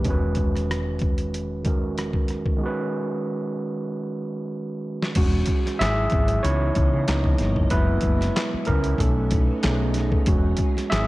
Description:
R&B, neo-soul; 94 BPM; 4/4; swing 53% on 16ths; A4 = 438 Hz
overdriven tine electric piano; accompaniment; 0.0-11.1 s; D#3 to E5; -25 LUFS; right 2 dB
woody fretless electric bass; bass; 0.0-11.1 s; E1 to C#3; -24 LUFS; equal
boom bap sampler-style drum kit; drums; 0.0-11.1 s; crash cymbal, handclaps, hi-hat, kick drum, rim click, snare drum; -24 LUFS; equal
soft string machine; sustained chords; 5.4-11.1 s; F#3 to E4; -35 LUFS; left 2 dB; phaser, ensemble chorus
little or no reverb; dark, warm production; -21 LUFS; side -18 dB against mid
0.0-5.2 A section; 5.2-11.1 B section
break 2.6-5.2; drum fill 3.9-5.2; tine electric piano solo 5.2-11.1
0.1 Emaj9; 2.6 G#7sus4; 5.2 E6; 5.8 G#7b13; 6.4 C#m9; 7.1 C#13; 7.7 F#7sus4; 9.0 B7; 9.6 B13; 10.3 E6
| 0.06 0.69 1.33 1.97 | 2.61 3.25 3.88 4.52 | 5.16 5.80 6.44 7.08 | 7.71 8.35 8.99 9.63 | 10.27 10.91

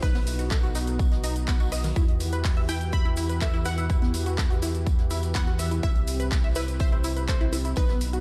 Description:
progressive house; 124 BPM; 4/4; straight; E harmonic minor; A4 = 441 Hz
unison pluck; melody; 0.0-8.2 s; B4 to B5; -39 LUFS; equal; sidechain pumping, analog delay
glassy wavetable pluck; second line; 0.0-8.2 s; B4 to B5; -46 LUFS; equal
warm analog pad; sustained chords; 0.0-8.2 s; E3 to B4; -37 LUFS; equal; chorus, vintage 12-bit sampler grit, sidechain pumping
tight sequenced synth; arpeggios; 0.0-8.2 s; D#3 to E5; -36 LUFS; equal; chorus, sidechain pumping, analog delay
round analog bass; bass; 0.0-8.2 s; B1 to E2; -31 LUFS; equal; tube saturation, sidechain pumping
big-room dance drum kit; drums; 0.0-8.2 s; handclaps, hi-hat, rim click; -38 LUFS; equal; overdrive, small room reverb
electronic kick drum; drums; 0.0-7.9 s; -26 LUFS; equal; overdrive, small room reverb
jazz brush drum kit; drums; 0.0-8.1 s; hi-hat, snare drum, tambourine; -48 LUFS; equal; sidechain pumping on hats, high-pass filter on hats, small room reverb, high-pass filter on snare, sidechain pumping on perc, high-pass filter on perc, high-pass filter on room
maracas; percussion; 0.0-8.2 s; -44 LUFS; equal
light reverb, studio reverb; lossy compression artefacts; -25 LUFS; mono
0.0-8.2 A section
0.0 B; 2.0 Emadd9; 5.8 C
| 0.03 0.51 0.99 1.48 | 1.96 2.45 2.93 3.41 | 3.90 4.38 4.87 5.35 | 5.83 6.32 6.80 7.29 | 7.77

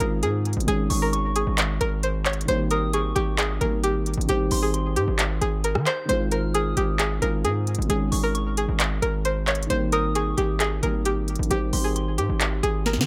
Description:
hip hop, trap; 133 BPM; 4/4; half-time; Ab major; A4 = 439 Hz
string-like resonator pluck; melody; 0.0-13.0 s; G4 to Db5; -29 LUFS; equal; chorus, dub echo
dark concert grand piano; accompaniment; 0.0-13.1 s; Eb3 to Ab4; -32 LUFS; equal; dub echo
distorted 808-style bass; bass; 0.0-13.1 s; Ab1 to Eb3; -28 LUFS; equal; distortion
trap drum kit; drums; 0.0-13.1 s; handclaps, hi-hat, rim click, snare drum; -29 LUFS; equal
soft synth bell; second line; 0.9-12.4 s; C6 to G6; -35 LUFS; equal; chorus, phaser, dub echo
light reverb; echo-heavy mix; -24 LUFS; mono
0.0-13.1 A section
drum fill 12.9
0.0 Ab6; 0.7 Dbsus2/Ab; 2.5 Eb/Ab; 4.3 Cm/Ab; 6.1 Ab6; 7.9 Dbsus2/Ab; 9.7 Eb/Ab; 11.5 Cm/Ab
0.23 | 0.68 1.13 1.58 2.03 | 2.48 2.93 3.38 3.84 | 4.29 4.74 5.19 5.64 | 6.09 6.54 6.99 7.45 | 7.90 8.35 8.80 9.25 | 9.70 10.15 10.60 11.05 | 11.51 11.96 12.41 12.86

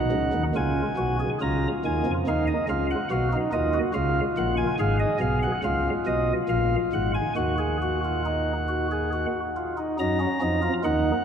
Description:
classical, baroque-style 3-part fugue for pipe organ; 70 BPM; 3/4; straight; B major, Eb minor from 4.8 s; A4 = 441 Hz
chamber organ, flutes; solo; 0.0-11.2 s; Ab1 to A#5; -22 LUFS; equal
wet cathedral reverb, RT60 6.2 s; in a vast, echoing space; -23 LUFS; side -7 dB against mid
0.0-10.0 A section; 10.0-11.2 B section
0.0 D#m; 1.4 C#; 2.3 B; 3.9 A#m/C#; 4.8 Fdim/Ab; 6.5 Bb5; 7.4 Ebm
0.56 1.41 | 2.26 3.10 3.94 | 4.79 5.63 6.48 | 7.36 8.25 9.13 | 10.00 10.86

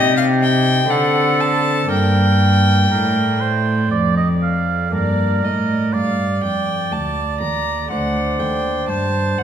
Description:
classical, baroque-style sonata movement with continuo; 61 BPM; 3/4; rubato; G minor; A4 = 438 Hz
rich violin; melody; 0.0-9.4 s; D5 to Bb5; -22 LUFS; left 5 dB
warm oboe; second line; 0.0-9.4 s; G4 to F5; -22 LUFS; right 7 dB
pipe organ, principal; accompaniment; 0.0-9.4 s; D2 to D5; -20 LUFS; equal
rich cello; bass; 0.0-9.4 s; D2 to D3; -21 LUFS; right 1 dB
wet recital hall reverb, RT60 1.6 s; minimal, uncompressed stereo recording; -15 LUFS; side -9 dB against mid
0.0-4.9 A section; 4.9-9.4 B section
0.0 Cm; 0.9 D7; 1.9 Gm; 7.9 D7
0.90 | 1.89 2.90 3.92 | 4.93 5.94 6.92 | 7.91 8.88

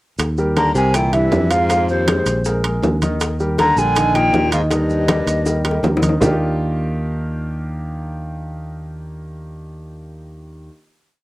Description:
Afro-Cuban jazz; 159 BPM; 4/4; straight; Eb major; A4 = 439 Hz
fingered electric bass; bass; 0.2-10.7 s; Bb1 to F2; -22 LUFS; equal
bongos; percussion; 0.2-6.3 s; -25 LUFS; left 3 dB
congas; percussion; 0.2-6.3 s; -24 LUFS; left 1 dB
maracas; percussion; 0.2-6.3 s; -34 LUFS; right 4 dB
timbales; percussion; 0.2-6.3 s; -23 LUFS; right 3 dB
warm concert grand piano; accompaniment; 0.4-10.7 s; Eb3 to F5; -23 LUFS; equal; cassette tape
breathy mellow jazz flute; melody; 0.6-5.8 s; C5 to Bb5; -19 LUFS; equal; cassette tape
clear baritone saxophone; second line; 0.6-5.8 s; Eb2 to D3; -22 LUFS; left 1 dB; cassette tape
light reverb; home recording on cassette; -15 LUFS; side -17 dB against mid
0.2-6.2 A section; 6.2-9.2 final chord
drum fill 5.5-6.2
0.2 Eb; 0.9 C; 1.7 Fm7; 2.5 Bb7sus4; 3.2 Eb; 6.2 Ebmaj9
| 0.19 0.57 0.94 1.32 | 1.70 2.08 2.45 2.83 | 3.21 3.58 3.96 4.34 | 4.71 5.09 5.46 5.84 | 6.22 6.59 6.97 7.34 | 7.72 8.10 8.47 8.85

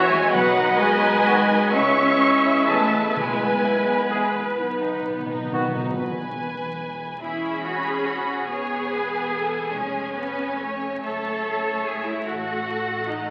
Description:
classical, slow romantic movement for symphony orchestra; 41-51 BPM (dotted quarters); 6/8; rubato; E major; A4 = 439 Hz
rich studio violin section; melody; 0.0-13.3 s; C#5 to C#6; -30 LUFS; equal
clear clarinet; second line; 0.0-5.6 s; D#4 to F#4; -33 LUFS; equal
clear studio violin section; second line; 0.0-13.3 s; G#3 to B5; -31 LUFS; equal
silver concert flute; second line; 0.0-4.6 s; E5 to C#6; -30 LUFS; equal
dark bassoon; accompaniment; 0.0-5.6 s; F#3 to B3; -32 LUFS; equal
warm studio viola section; accompaniment; 0.0-13.3 s; G#3 to E5; -28 LUFS; equal
mellow French horn section; sustained chords; 0.0-4.6 s; E3 to C#4; -27 LUFS; equal
mellow trombone section; sustained chords; 0.0-5.7 s; D#3 to B3; -36 LUFS; equal
warm trumpet; stabs; 0.0-5.7 s; F#4 to G#4; -31 LUFS; equal
rich studio cello section; bass; 0.0-13.3 s; E3 to A4; -30 LUFS; equal
rich studio double bass section; bass; 0.0-13.3 s; E1 to C#2; -42 LUFS; equal
timpani; percussion; 0.3-7.2 s; E2 to B2; -36 LUFS; equal
wet concert hall reverb, RT60 2.0 s; very old 78 rpm record, vinyl crackle; -23 LUFS; mono
0.0-6.0 A section; 6.0-13.3 B section
timpani fill 4.6-6.0
0.3 B; 1.7 C#m7; 3.2 E/B; 4.6 B; 6.0 E; 8.5 C#7/E; 11.0 F#m7
| 0.34 1.75 | 3.16 4.58 | 5.96 7.22 | 8.47 9.71 | 11.02 12.26

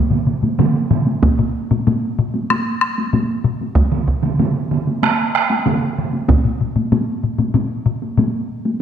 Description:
japanese traditional, taiko drum ensemble; 95 BPM; 4/4; straight
solo taiko drums; percussion; 0.1-8.3 s; -19 LUFS; left 5 dB
taiko ensemble; percussion; 0.1-6.1 s; -18 LUFS; right 4 dB
taiko ensemble; percussion; 0.4-8.8 s; -20 LUFS; equal
solo taiko drums; percussion; 1.2-6.4 s; -17 LUFS; right 2 dB
wet scoring stage reverb, RT60 1.5 s; -15 LUFS; side -9 dB against mid
0.0-1.2 A section; 1.2-8.8 B section
0.59 | 1.23 1.86 2.50 3.13 | 3.76 4.40 5.03 5.66 | 6.29 6.92 7.55 8.18

